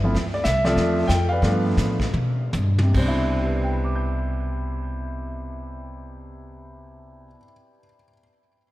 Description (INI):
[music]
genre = jazz piano trio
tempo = 137-197 BPM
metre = 4/4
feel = swing 62% on 8ths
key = C major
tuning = A4 = 441 Hz
[part]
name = warm grand piano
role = melody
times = 0.0-8.2 s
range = B2 to G6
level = -25 LUFS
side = equal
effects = tape echo
[part]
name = upright bass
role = bass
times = 0.0-7.3 s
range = G1 to B2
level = -24 LUFS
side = equal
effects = none
[part]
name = vintage brush drum kit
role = drums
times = 0.1-3.1 s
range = brushed snare drum, crash cymbal, hi-hat, kick drum, snare drum, toms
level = -29 LUFS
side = equal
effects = none
[sound]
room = moderate lush hall reverb, RT60 1.9 s, small room ambience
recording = dreamy mix soaked in reverb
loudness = -20 LUFS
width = side -16 dB against mid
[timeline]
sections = 0.0-3.0 A section; 3.0-6.5 B section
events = slowing down 0.2-3.0; drum fill 2.1-3.0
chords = 0.2 Dm7; 1.4 G7; 3.0 Cmaj9